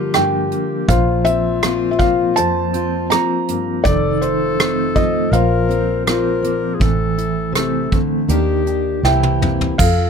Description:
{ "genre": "acoustic folk-pop ballad", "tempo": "81 BPM", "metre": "4/4", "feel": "straight", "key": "unclear", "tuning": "A4 = 439 Hz", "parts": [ { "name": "felt-muted upright piano", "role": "melody", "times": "0.0-10.1 s", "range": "F4 to Bb5", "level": "-20 LUFS", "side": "right 1 dB", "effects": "none" }, { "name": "dark clarinet", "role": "second line", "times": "0.0-10.1 s", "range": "E4 to Bb4", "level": "-24 LUFS", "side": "left 5 dB", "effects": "none" }, { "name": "fingerpicked plugged-in steel-string acoustic guitar", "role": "accompaniment", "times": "0.0-10.1 s", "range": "F2 to G4", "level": "-23 LUFS", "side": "left 5 dB", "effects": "none" }, { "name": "mellow electric guitar", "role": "arpeggios", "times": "0.0-10.1 s", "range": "Eb3 to G4", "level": "-22 LUFS", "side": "right 2 dB", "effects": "tremolo" }, { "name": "fingered electric bass", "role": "bass", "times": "0.0-10.1 s", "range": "F1 to G2", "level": "-20 LUFS", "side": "right 1 dB", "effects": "none" }, { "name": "soft brush drum kit", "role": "drums", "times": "0.1-10.0 s", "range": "crash cymbal, hi-hat, kick drum, rim click, snare drum, toms", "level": "-20 LUFS", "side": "right 1 dB", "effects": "none" } ], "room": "little or no reverb", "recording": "close, detailed microphones", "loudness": "-15 LUFS", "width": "side -6 dB against mid", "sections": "0.0-9.8 A section", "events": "drum fill 9.0-9.8", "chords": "0.0 Gm7; 0.9 Bbsus2; 3.8 F7; 5.3 Bbsus2; 6.8 Am; 8.3 Ebmaj7; 9.0 C7", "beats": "0.14 | 0.88 1.62 2.37 3.11 | 3.85 4.59 5.33 6.07 | 6.81 7.55 8.30 9.04 | 9.79" }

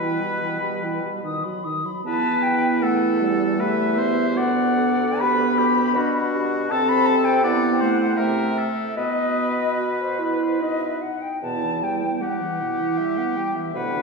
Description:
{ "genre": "classical, slow romantic movement for wind quintet", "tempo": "69-82 BPM", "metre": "3/4", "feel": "rubato", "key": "E minor", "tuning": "A4 = 440 Hz", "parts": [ { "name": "silver concert flute", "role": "melody", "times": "0.0-14.0 s", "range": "B4 to D#6", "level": "-24 LUFS", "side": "left 5 dB", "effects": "none" }, { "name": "clear oboe", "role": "second line", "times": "0.0-14.0 s", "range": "F#4 to D5", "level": "-28 LUFS", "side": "left 2 dB", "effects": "none" }, { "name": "dark French horn", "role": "accompaniment", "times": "0.0-14.0 s", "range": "B2 to F#4", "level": "-25 LUFS", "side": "right 1 dB", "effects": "none" }, { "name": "dark clarinet", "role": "accompaniment", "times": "0.0-14.0 s", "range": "D#4 to A4", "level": "-27 LUFS", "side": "right 8 dB", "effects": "none" }, { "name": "mellow bassoon", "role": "bass", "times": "0.0-14.0 s", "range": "D2 to C3", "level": "-28 LUFS", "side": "right 1 dB", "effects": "none" } ], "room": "wet concert hall reverb, RT60 2.5 s", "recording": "studio reverb", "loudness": "-19 LUFS", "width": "side -3 dB against mid", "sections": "0.0-2.1 A section; 2.1-14.0 B section", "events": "none", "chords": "0.0 Em/B; 1.2 B; 2.1 Em; 4.4 Bm/D; 6.7 Am/C; 8.2 C7; 9.0 B; 11.4 Em", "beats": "0.43 1.25 | 2.06 2.83 3.60 | 4.37 5.20 5.96 | 6.71 7.44 8.18 | 8.97 9.78 10.61 | 11.43 12.22 12.98 | 13.74" }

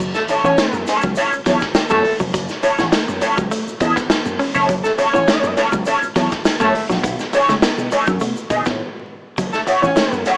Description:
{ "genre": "funk", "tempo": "102 BPM", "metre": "4/4", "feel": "straight", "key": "F# dorian", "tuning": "A4 = 440 Hz", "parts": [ { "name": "semi-hollow electric guitar", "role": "riff", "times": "0.0-10.1 s", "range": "E3 to C#4", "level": "-27 LUFS", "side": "equal", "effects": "spring reverb" }, { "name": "slap bass with an envelope filter", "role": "bass", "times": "0.0-10.2 s", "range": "E#1 to B2", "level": "-26 LUFS", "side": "equal", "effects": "none" }, { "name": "egg shaker", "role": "percussion", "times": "0.0-10.4 s", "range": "none", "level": "-42 LUFS", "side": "equal", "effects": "none" }, { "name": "mellow horn section", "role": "second line", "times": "0.1-10.2 s", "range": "A3 to C#5", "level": "-20 LUFS", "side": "equal", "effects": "none" }, { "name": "raw garage drum kit", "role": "drums", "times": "0.1-10.4 s", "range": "hi-hat, kick drum, snare drum", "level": "-23 LUFS", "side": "equal", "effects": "none" }, { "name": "semi-hollow electric guitar", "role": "accompaniment", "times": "0.3-10.4 s", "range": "A3 to D#5", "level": "-20 LUFS", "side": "equal", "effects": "wah, lush chorus" } ], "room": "moderate studio ambience, RT60 0.5 s", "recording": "vinyl crackle, small speaker sound", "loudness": "-18 LUFS", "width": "mono", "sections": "0.0-10.4 A section", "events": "break 8.8-9.4", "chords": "0.0 F#m7; 7.0 B13; 9.4 F#m7", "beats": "0.58 1.17 1.75 | 2.34 2.93 3.51 4.10 | 4.69 5.27 5.86 6.45 | 7.03 7.62 8.21 8.79 | 9.38 9.96" }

